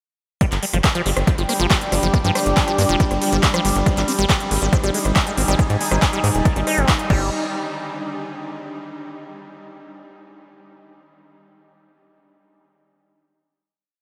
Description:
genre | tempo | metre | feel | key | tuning
psychedelic trance | 139 BPM | 4/4 | straight | unclear | A4 = 440 Hz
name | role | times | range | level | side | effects
overtone-sweeping drone | sustained chords | 1.1-7.1 s | G3 | -30 LUFS | equal | chorus, built-in reverb, phaser, sidechain pumping
liquid acid bass | riff | 0.4-7.3 s | F3 to Eb4 | -27 LUFS | equal | phaser, sidechain pumping, diffuse ambient delay
big-room dance drum kit | drums | 0.4-7.2 s | crash cymbal, handclaps, hi-hat, rim click | -26 LUFS | equal | overdrive
electronic kick drum | drums | 0.4-7.2 s | none | -20 LUFS | equal | overdrive
deep dark ambient pad | texture | 1.3-9.0 s | D4 to Eb6 | -29 LUFS | equal | chorus, built-in reverb, sidechain pumping
tight sequencer bass | bass | 0.5-7.3 s | Eb1 to Ab2 | -23 LUFS | equal | tube saturation
room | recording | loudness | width
wet huge ambient reverb, RT60 7.8 s | dreamy mix soaked in reverb | -19 LUFS | mono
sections
0.4-7.3 drop; 7.3-9.0 final chord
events
drop 0.4-7.3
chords
0.4 G5; 3.9 Ab5; 7.1 G5

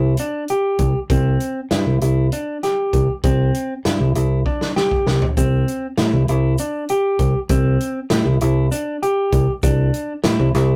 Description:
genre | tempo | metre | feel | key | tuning
progressive instrumental, band music in an uneven meter | 197 BPM (eighths) | 7/8 | straight | C major | A4 = 444 Hz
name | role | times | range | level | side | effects
mellow electric guitar | arpeggios | 0.0-10.8 s | C4 to G4 | -24 LUFS | equal | none
fingered electric bass | bass | 0.0-10.8 s | C2 to A2 | -19 LUFS | equal | none
natural country drum kit | drums | 0.2-10.7 s | hi-hat, kick drum, snare drum, toms | -24 LUFS | equal | none
egg shaker | percussion | 5.4-9.9 s | none | -38 LUFS | equal | none
room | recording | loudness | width
wet booth ambience, RT60 0.2 s | rough rehearsal-room recording, warm saturation | -19 LUFS | mono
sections
0.0-10.8 A section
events
drum fill 4.5-5.4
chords
0.0 Cadd9

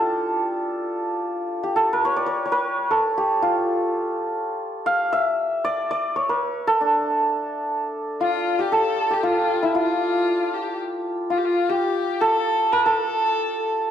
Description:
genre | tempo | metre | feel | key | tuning
Persian modal ensemble | 116 BPM | 3/4 | straight | unclear | A4 = 441 Hz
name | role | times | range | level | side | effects
santur | melody | 0.0-13.9 s | D4 to F5 | -20 LUFS | equal | none
bright kamancheh | second line | 8.2-13.9 s | E4 to Bb4+49c | -26 LUFS | left 6 dB | none
room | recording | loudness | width
moderate recital hall reverb, RT60 1.7 s | none | -20 LUFS | side -9 dB against mid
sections
0.0-8.2 A section; 8.2-13.9 B section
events
none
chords
none

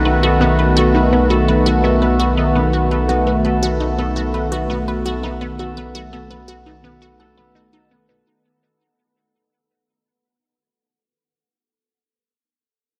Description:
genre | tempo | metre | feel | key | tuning
ambient, sequencer-driven space music | 84 BPM | 4/4 | straight | unclear | A4 = 438 Hz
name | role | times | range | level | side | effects
sweeping resonant pad | sustained chords | 0.0-8.3 s | D#3 to B4 | -20 LUFS | equal | chorus
concert harp | arpeggios | 0.0-11.0 s | B3 to A4 | -27 LUFS | equal | delay
resonant blip pluck | riff | 0.0-8.3 s | B3 to F#5 | -25 LUFS | equal | phaser, delay
round analog bass | bass | 0.0-8.2 s | B1 | -23 LUFS | equal | none
room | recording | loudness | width
moderate huge ambient reverb, RT60 8.4 s | none | -16 LUFS | mono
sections
0.0-8.3 A section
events
fade-out 0.7-8.3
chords
0.0 B7

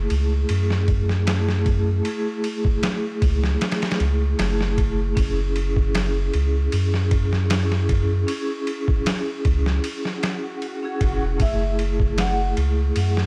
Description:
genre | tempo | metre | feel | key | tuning
trip hop | 77 BPM | 4/4 | swing 54% on 16ths | F# minor | A4 = 441 Hz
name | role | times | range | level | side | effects
vibraphone with medium mallets | accompaniment | 0.0-13.3 s | A3 to G#4 | -29 LUFS | equal | tremolo
soft dub sub bass | bass | 0.0-13.3 s | E1 to F#2 | -24 LUFS | equal | none
trip hop sampler-style drum kit | drums | 0.1-13.3 s | kick drum, ride cymbal, snare drum | -27 LUFS | equal | studio reverb
swell | sound effects | 10.2-11.4 s | none | -38 LUFS | equal | none
pure breathy sine lead | melody | 11.4-12.5 s | E5 to F#5 | -31 LUFS | equal | analog chorus, tape echo
room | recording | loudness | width
light reverb | dark, warm production | -22 LUFS | mono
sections
0.0-13.3 A section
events
swell 10.2-11.4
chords
0.0 F#m7; 5.2 C#m/F#; 11.4 F#m7

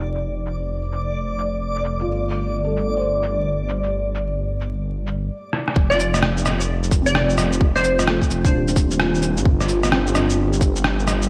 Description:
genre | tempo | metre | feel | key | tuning
future garage | 130 BPM | 4/4 | swing 63% on 16ths | unclear | A4 = 440 Hz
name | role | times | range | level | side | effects
felt-muted upright piano | accompaniment | 0.0-11.3 s | A3 to C5 | -30 LUFS | equal | sidechain pumping, low-pass filter, digital delay
deep dark ambient pad | sustained chords | 0.4-11.3 s | G3 to C5 | -31 LUFS | equal | chorus, built-in reverb, sidechain pumping
swelling detuned saw bass | bass | 0.0-11.3 s | Eb1 to A1 | -25 LUFS | equal | tube saturation, sidechain pumping
electronic shaker, rim click and cabasa | drums | 0.0-11.3 s | none | -26 LUFS | equal | overdrive, low-pass filter on perc, low-pass filter on snare, low-pass filter on room, gated reverb
backwards swelling texture | texture | 0.0-5.3 s | D5 | -29 LUFS | equal | built-in reverb, lush chorus
electronic kick drum | drums | 5.8-10.7 s | none | -20 LUFS | equal | none
glassy wavetable pluck | melody | 5.9-8.2 s | C5 to D5 | -25 LUFS | equal | chorus, digital delay
room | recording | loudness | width
moderate lush hall reverb, RT60 1.8 s, digital ambience | bright 1980s-style digital production, vinyl crackle | -21 LUFS | mono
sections
0.0-5.8 A section; 5.8-11.3 B section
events
filter sweep on felt piano 0.0-5.8; drum fill 5.5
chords
0.0 F; 2.1 Gmadd9; 5.8 F; 9.5 Gmadd9

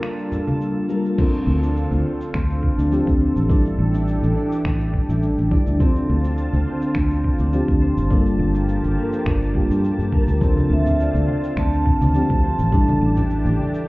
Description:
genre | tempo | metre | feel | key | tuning
sunset chillout | 104 BPM | 4/4 | swing 53% on 16ths | D minor | A4 = 439 Hz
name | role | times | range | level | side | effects
mellow FM electric piano | accompaniment | 0.0-13.9 s | F3 to A4 | -24 LUFS | left 1 dB | chorus, auto-pan, ping-pong delay
lush unison pad | sustained chords | 0.0-13.9 s | D3 to A5 | -29 LUFS | equal | chorus
concert harp | arpeggios | 0.0-13.9 s | C4 to D5 | -26 LUFS | equal | ping-pong delay
dusty soul sampler-style drum kit | drums | 0.0-13.9 s | cabasa, crash cymbal, finger snaps | -38 LUFS | equal | none
drifting glass-harmonics texture | texture | 0.0-1.2 s | A5 | -42 LUFS | right 3 dB | chorus, built-in reverb
congas | percussion | 0.3-0.6, 10.6-13.7 s | none | -26 LUFS | equal | none
electronic kick drum | drums | 1.2-12.8 s | none | -20 LUFS | equal | none
fingered electric bass | bass | 1.5-13.6 s | G1 to G2 | -20 LUFS | equal | none
vibraphone with hard mallets | melody | 10.7-13.0 s | D5 to A5 | -26 LUFS | right 2 dB | ping-pong delay
room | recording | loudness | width
light reverb, digital ambience | heard muffled through a wall, club ambience, EQ | -17 LUFS | side -21 dB against mid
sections
0.0-1.2 A section; 1.2-13.9 B section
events
filter sweep on FM electric piano 0.0-1.2; break 0.0-1.2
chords
0.0 Gm9; 1.2 Dm7; 3.5 A7sus4; 5.8 Dm7; 8.1 Gm9; 10.4 Dm7; 12.7 A7sus4

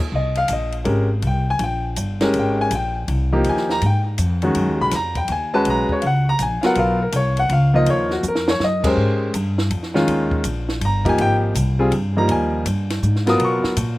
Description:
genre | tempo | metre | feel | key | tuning
modal jazz | 163 BPM | 3/4 | swing 65% on 8ths | Ab major | A4 = 440 Hz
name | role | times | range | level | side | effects
upright bass | bass | 0.1-14.0 s | G1 to B2 | -21 LUFS | equal | none
clear baby grand piano | accompaniment | 0.2-13.8 s | Eb3 to Eb6 | -19 LUFS | left 1 dB | none
compact cocktail drum kit | drums | 0.4-13.9 s | crash cymbal, hi-hat, kick drum, ride cymbal, snare drum | -27 LUFS | equal | none
room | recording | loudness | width
little or no reverb | recorded outdoors, with no room sound | -17 LUFS | side -18 dB against mid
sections
0.1-14.0 A section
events
drum fill 8.2-8.6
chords
0.1 Abmaj9; 4.5 Bmaj9; 9.0 Abmaj9; 13.4 Bmaj7sus2

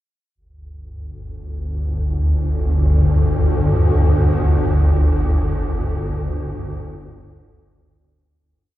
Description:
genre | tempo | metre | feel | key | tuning
ambient | free time | none | none | unclear | A4 = 439 Hz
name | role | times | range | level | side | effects
swarming drone | solo | 1.3-8.5 s | G1 to D2 | -16 LUFS | equal | built-in reverb
room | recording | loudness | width
light reverb | dark, warm production | -16 LUFS | side -14 dB against mid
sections
0.4-8.4 A section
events
fade-out 4.4-8.4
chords
0.4 G5

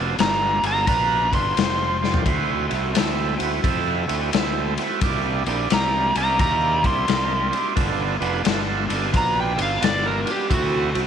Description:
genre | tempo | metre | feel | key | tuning
blues rock power trio and southern rock | 87 BPM | 4/4 | swing 65% on 8ths | unclear | A4 = 440 Hz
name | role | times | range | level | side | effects
overdriven tonewheel organ | sustained chords | 0.0-11.1 s | F3 to D5 | -26 LUFS | right 11 dB | slow rotary speaker
fuzz fingered electric bass | bass | 0.0-11.1 s | F1 to F2 | -26 LUFS | right 1 dB | overdrive
overdriven slide guitar | melody | 0.2-11.0 s | F#4 to C6 | -23 LUFS | equal | none
raw garage drum kit | drums | 0.2-11.1 s | kick drum, ride cymbal, snare drum, toms | -24 LUFS | left 4 dB | none
room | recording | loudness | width
light reverb, studio ambience | 1960s-style stereo | -19 LUFS | side -8 dB against mid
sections
0.0-11.1 A section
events
electric slide guitar solo 0.0-11.1; drum fill 1.9-2.3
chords
0.0 G7; 1.6 F5; 2.3 D7; 5.0 C7; 7.8 G7; 10.5 D7

